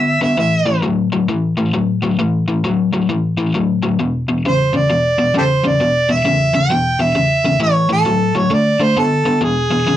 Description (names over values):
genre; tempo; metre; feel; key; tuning
blues; 133 BPM; 4/4; swing 64% on 8ths; A major; A4 = 440 Hz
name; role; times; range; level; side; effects
warm harmonica; melody; 0.0-0.8, 4.5-10.0 s; G4 to G5; -16 LUFS; right 2 dB; overdrive
biting overdriven guitar; riff; 0.0-10.0 s; E2 to B3; -15 LUFS; left 2 dB; none
room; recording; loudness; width
moderate club reverb, RT60 0.5 s; nothing above 10.5 kHz; -13 LUFS; side -12 dB against mid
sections
0.0-10.0 A section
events
none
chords
0.4 A5; 4.0 E5; 7.6 A5; 8.5 D5; 9.4 E